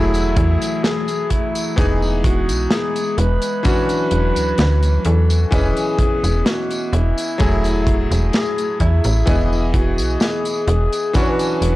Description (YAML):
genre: vaporwave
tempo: 64 BPM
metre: 4/4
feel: straight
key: E major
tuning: A4 = 440 Hz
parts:
  - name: breathy alto saxophone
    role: melody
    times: 0.0-11.8 s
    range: E4 to C#5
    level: -23 LUFS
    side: equal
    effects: vintage 12-bit sampler grit, tape echo
  - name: bright electric grand piano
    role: accompaniment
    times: 0.0-11.8 s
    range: E3 to D#5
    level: -22 LUFS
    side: left 1 dB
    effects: lush chorus
  - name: warbly tape-like pad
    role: sustained chords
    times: 0.2-11.8 s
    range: A2 to G#4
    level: -30 LUFS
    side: left 2 dB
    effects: chorus, built-in reverb
  - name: slap-like FM bass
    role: bass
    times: 0.0-11.8 s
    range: E1 to E2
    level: -17 LUFS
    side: equal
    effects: none
  - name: modern studio drum kit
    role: drums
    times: 0.1-11.8 s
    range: hi-hat, snare drum, tambourine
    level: -24 LUFS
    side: equal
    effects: none
  - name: kick drum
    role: drums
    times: 0.4-11.3 s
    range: none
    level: -19 LUFS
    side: equal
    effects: none
room: little or no reverb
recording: dry, gritty hardware recording, cassette tape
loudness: -15 LUFS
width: side -17 dB against mid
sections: 0.0-11.8 A section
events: none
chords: 0.0 F#m9/E; 1.8 Emaj7; 3.6 Dmaj9/E; 5.5 C#m9/E; 7.4 F#m9/E; 9.3 Emaj7; 11.1 Dmaj9/E